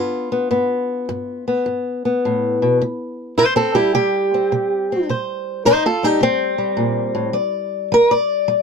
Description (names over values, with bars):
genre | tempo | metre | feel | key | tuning
acoustic country blues, solo or duo | 105 BPM | 4/4 | swing 66% on 8ths | G mixolydian | A4 = 440 Hz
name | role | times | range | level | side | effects
fingerpicked old ladder-braced acoustic guitar | solo | 0.0-8.6 s | G2 to D5 | -16 LUFS | left 1 dB | none
room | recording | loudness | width
moderate booth ambience, RT60 0.2 s | none | -16 LUFS | side -5 dB against mid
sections
0.0-8.6 A section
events
steel-string acoustic guitar solo 0.0-8.6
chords
0.0 G7; 2.8 C5; 5.1 Cm7; 7.4 G5